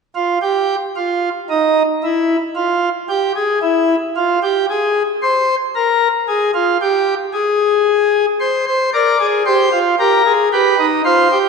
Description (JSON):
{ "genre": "classical, baroque-style 4-part fugue for pipe organ", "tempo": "56 BPM", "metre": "4/4", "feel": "straight", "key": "unclear", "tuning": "A4 = 440 Hz", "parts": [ { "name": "pipe organ, principal chorus", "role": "solo", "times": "0.2-11.5 s", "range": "Eb4 to D5", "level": "-13 LUFS", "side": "equal", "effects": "none" } ], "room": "wet concert hall reverb, RT60 2.2 s", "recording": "minimal, uncompressed stereo recording", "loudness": "-13 LUFS", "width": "side -5 dB against mid", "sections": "0.0-11.5 A section", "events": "none", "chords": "0.0 N.C.; 8.4 C5; 10.5 G", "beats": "0.96 2.02 3.09 | 4.16 5.22 6.28 7.34 | 8.41 9.47 10.52" }